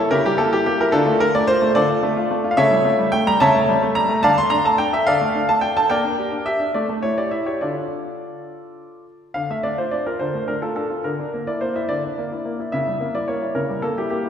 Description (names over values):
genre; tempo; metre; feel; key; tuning
classical-period piano sonatina; 72 BPM (dotted quarters); 6/8; rubato; D minor; A4 = 440 Hz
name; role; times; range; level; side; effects
clear grand piano; solo; 0.0-14.3 s; C#3 to C6; -18 LUFS; equal; none
room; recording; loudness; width
wet scoring stage reverb, RT60 1.9 s; recorded in a church or concert hall; -17 LUFS; side -8 dB against mid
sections
0.0-9.4 A section; 9.4-14.3 B section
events
none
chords
0.0 C#dim7; 0.9 Dm; 2.6 A7/C#; 4.2 Dm; 5.9 Gm/Bb; 6.7 A5; 7.6 Dm; 11.1 C9/D (rootless); 12.7 C#dim7